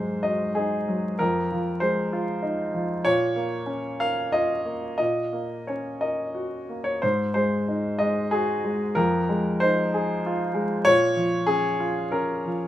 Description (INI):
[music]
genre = neoclassical minimalist piano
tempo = 87-98 BPM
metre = 3/4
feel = rubato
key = Bb minor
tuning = A4 = 440 Hz
[part]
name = warm baby grand piano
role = solo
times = 0.0-12.7 s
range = F2 to F5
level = -22 LUFS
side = equal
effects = none
[sound]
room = moderate studio ambience, RT60 0.5 s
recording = minimal, uncompressed stereo recording, vinyl crackle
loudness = -22 LUFS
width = side -13 dB against mid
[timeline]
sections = 0.0-12.7 A section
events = none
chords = 0.0 Ab7; 1.2 Fm7; 3.0 Bbm; 5.0 Ebm7/Bb; 7.0 Ab7; 9.0 Fm7; 10.9 Bbm